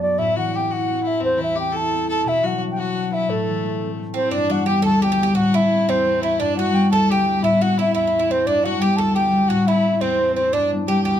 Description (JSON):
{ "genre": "celtic folk", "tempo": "116 BPM (dotted quarters)", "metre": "6/8", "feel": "straight", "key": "A dorian", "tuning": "A4 = 439 Hz", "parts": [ { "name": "mellow baroque flute", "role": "melody", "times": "0.0-11.2 s", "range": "A4 to A5", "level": "-20 LUFS", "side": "equal", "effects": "plate reverb" }, { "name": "concert harp", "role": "accompaniment", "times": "0.0-11.2 s", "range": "D2 to B4", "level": "-20 LUFS", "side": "left 2 dB", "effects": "none" }, { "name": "rich fiddle", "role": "second line", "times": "0.2-11.2 s", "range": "A3 to A4", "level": "-28 LUFS", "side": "left 5 dB", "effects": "none" }, { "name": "Irish bouzouki", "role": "second line", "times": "4.1-11.2 s", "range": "C4 to A4", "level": "-28 LUFS", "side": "right 9 dB", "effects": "none" } ], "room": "moderate studio reverb, RT60 0.6 s", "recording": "close, detailed microphones", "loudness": "-17 LUFS", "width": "side -10 dB against mid", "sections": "0.0-4.3 A section; 4.3-11.2 B section", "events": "none", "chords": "0.2 Am; 2.3 Bm; 3.3 Am; 4.3 G; 5.4 Am; 6.4 G; 7.4 Am; 8.5 G; 9.5 Am; 10.5 G", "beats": "| 0.18 0.70 | 1.22 1.74 | 2.25 2.77 | 3.29 3.81 | 4.33 4.84 | 5.36 5.88 | 6.40 6.91 | 7.43 7.95 | 8.46 8.98 | 9.50 10.02 | 10.53 11.05" }